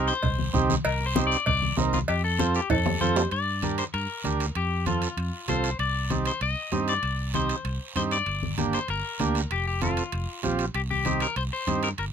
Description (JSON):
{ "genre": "latin, cumbia", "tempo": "194 BPM", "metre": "4/4", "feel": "straight", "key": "unclear", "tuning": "A4 = 440 Hz", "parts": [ { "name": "clean electric guitar", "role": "second line", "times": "0.0-12.0 s", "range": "F4 to Eb5", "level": "-29 LUFS", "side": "left 6 dB", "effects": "none" }, { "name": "combo organ", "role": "accompaniment", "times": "0.0-11.9 s", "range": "Bb3 to Bb4", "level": "-27 LUFS", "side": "right 5 dB", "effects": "none" }, { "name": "fingered electric bass", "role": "bass", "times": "0.0-12.1 s", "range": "F1 to G2", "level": "-29 LUFS", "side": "equal", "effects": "none" }, { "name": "guiro", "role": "percussion", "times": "0.1-12.1 s", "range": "none", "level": "-38 LUFS", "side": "right 6 dB", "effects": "none" }, { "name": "congas", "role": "percussion", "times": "0.2-11.8 s", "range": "none", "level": "-31 LUFS", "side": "left 3 dB", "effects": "none" }, { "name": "cowbell and timbales", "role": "percussion", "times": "0.2-12.1 s", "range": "none", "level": "-32 LUFS", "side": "right 3 dB", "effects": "none" } ], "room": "light reverb", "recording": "minimal, uncompressed stereo recording", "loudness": "-24 LUFS", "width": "side -8 dB against mid", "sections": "0.0-3.3 A section; 3.3-12.1 B section", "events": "clean electric guitar solo 0.0-3.3, 3.3-12.1; drum fill 2.7-3.3", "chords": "0.0 Cm; 2.1 F; 3.3 Gm; 4.6 F; 5.8 Cm; 8.3 Gm; 9.5 F; 10.7 Cm", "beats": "0.23 0.54 | 0.85 1.16 1.46 1.77 | 2.08 2.39 2.70 3.01 | 3.32 3.63 3.94 4.25 | 4.55 4.86 5.17 5.48 | 5.79 6.10 6.41 6.72 | 7.03 7.34 7.65 7.96 | 8.27 8.58 8.89 9.20 | 9.51 9.82 10.13 10.44 | 10.75 11.06 11.37 11.68 | 11.98" }